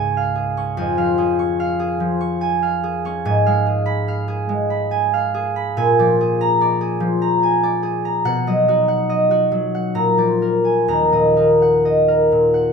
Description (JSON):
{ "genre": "classical, solo harp piece", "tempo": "62-74 BPM", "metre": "3/4", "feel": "rubato", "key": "unclear", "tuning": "A4 = 440 Hz", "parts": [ { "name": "concert harp", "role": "solo", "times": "0.0-12.7 s", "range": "Db2 to Db6", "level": "-16 LUFS", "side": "equal", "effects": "none" } ], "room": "light reverb", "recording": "close, detailed microphones", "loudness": "-16 LUFS", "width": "side -5 dB against mid", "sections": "0.0-12.7 A section", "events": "none", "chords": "0.0 Db; 0.8 Db/F; 3.3 Fdim/Ab; 5.8 Bb7; 8.3 B; 10.0 Bb7; 10.9 Ebm" }